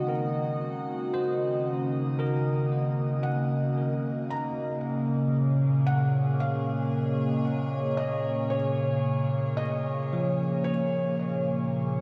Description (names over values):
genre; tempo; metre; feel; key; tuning
ambient; 57 BPM; 4/4; straight; unclear; A4 = 436 Hz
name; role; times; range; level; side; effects
felt-muted upright piano; melody; 0.0-12.0 s; Bb4 to Bb5; -39 LUFS; equal; shimmer reverb, delay
evolving wavetable pad; sustained chords; 0.0-12.0 s; Bb2 to Eb5; -28 LUFS; equal; chorus, built-in reverb, phaser, shimmer reverb
bell-like tine electric piano; arpeggios; 0.0-12.0 s; F3 to Eb6; -38 LUFS; equal; delay
room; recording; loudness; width
wet lush hall reverb, RT60 3.0 s; dark, warm production; -28 LUFS; mono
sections
0.0-12.0 A section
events
fade-in on tine electric piano 0.0-12.0; fade-in on felt piano 0.0-12.0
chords
0.0 Ebm7; 4.3 Bbm7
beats
| 0.08 1.15 2.20 3.25 | 4.30 5.35 6.41 7.47 | 8.53 9.60 10.68 11.76